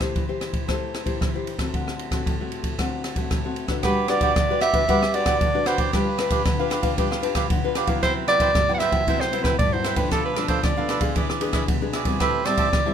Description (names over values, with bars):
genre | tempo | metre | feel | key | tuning
samba and choro | 115 BPM | 4/4 | straight | G major | A4 = 440 Hz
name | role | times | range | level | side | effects
nylon-string guitar | accompaniment | 0.0-12.9 s | G2 to C5 | -27 LUFS | left 6 dB | none
open jazz drum kit | drums | 0.0-12.8 s | kick drum, ride cymbal, rim click | -24 LUFS | equal | none
warm soprano saxophone | melody | 3.8-12.9 s | A4 to F#5 | -23 LUFS | right 2 dB | none
cavaquinho | accompaniment | 3.8-12.9 s | D4 to A5 | -26 LUFS | right 6 dB | none
room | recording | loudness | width
light reverb | minimal, uncompressed stereo recording | -20 LUFS | side -8 dB against mid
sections
0.0-3.8 A section; 3.8-12.9 B section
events
none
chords
0.0 Am7; 1.7 D7; 3.8 Gmaj7; 5.9 G7; 8.0 Cmaj9#11; 10.1 Bm7b5; 11.2 E7; 12.2 Am7